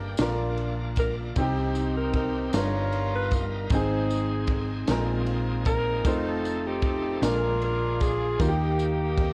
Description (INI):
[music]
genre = slow gospel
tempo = 51 BPM (dotted quarters)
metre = 6/8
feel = straight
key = unclear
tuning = A4 = 440 Hz
[part]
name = warm saxophone section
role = melody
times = 0.0-9.3 s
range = Bb3 to Db5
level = -32 LUFS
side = equal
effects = none
[part]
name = warm grand piano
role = accompaniment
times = 0.0-9.3 s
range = G2 to C5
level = -32 LUFS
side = equal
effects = none
[part]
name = bright tonewheel organ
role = sustained chords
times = 0.0-9.3 s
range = F3 to A#4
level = -41 LUFS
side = equal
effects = slow rotary speaker, overdrive
[part]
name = hollow-body short-scale fingered electric bass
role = bass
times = 0.0-9.3 s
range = F1 to Eb2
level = -32 LUFS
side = equal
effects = none
[part]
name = crisp fusion drum kit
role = drums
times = 0.2-9.3 s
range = kick drum, ride cymbal, snare drum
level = -32 LUFS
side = equal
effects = none
[part]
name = tambourine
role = percussion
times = 0.2-9.2 s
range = none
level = -46 LUFS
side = equal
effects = none
[sound]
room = little or no reverb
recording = worn, warbling old tape, cassette tape, warbly pitch drift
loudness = -26 LUFS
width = mono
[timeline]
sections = 0.0-9.3 A section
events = none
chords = 0.2 Bb; 1.4 Cm; 2.5 G7alt; 3.7 Ab; 4.9 Bb9sus4; 6.1 F7; 7.2 Bb7; 8.4 Eb